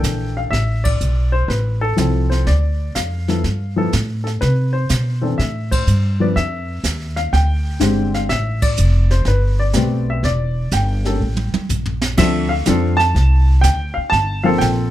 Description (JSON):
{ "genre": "jazz piano trio", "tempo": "124 BPM", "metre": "4/4", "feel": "swing 68% on 8ths", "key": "A minor", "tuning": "A4 = 439 Hz", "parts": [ { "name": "dark baby grand piano", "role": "melody", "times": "0.0-14.9 s", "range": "D3 to A5", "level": "-20 LUFS", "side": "left 2 dB", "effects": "none" }, { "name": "upright bass", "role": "bass", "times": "0.0-14.9 s", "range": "E1 to C3", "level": "-17 LUFS", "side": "equal", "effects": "none" }, { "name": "jazz brush drum kit", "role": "drums", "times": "0.0-14.9 s", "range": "brushed snare drum, crash cymbal, hi-hat, kick drum, ride cymbal, snare drum, toms", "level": "-23 LUFS", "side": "right 2 dB", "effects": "none" } ], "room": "light reverb", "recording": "none", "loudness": "-15 LUFS", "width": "side -13 dB against mid", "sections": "0.0-12.2 A section; 12.2-14.9 B section", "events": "band accent 0.8, 5.6, 8.5; drum fill 11.2-12.2", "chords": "0.0 C13 (rootless); 0.5 Fmaj7; 2.5 Dm; 3.4 G7sus2; 4.4 C6; 6.4 D#sus2; 7.3 Fm69 (rootless); 8.3 Am9; 10.2 Em7; 11.2 N.C.; 12.2 Dm7; 14.1 Gm11", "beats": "0.04 | 0.53 1.01 1.50 1.98 | 2.47 2.95 3.44 3.92 | 4.41 4.89 5.38 5.87 | 6.35 6.84 7.32 7.81 | 8.30 8.78 9.27 9.76 | 10.24 10.73 11.21 11.70 | 12.19 12.67 13.16 13.64 | 14.13 14.61" }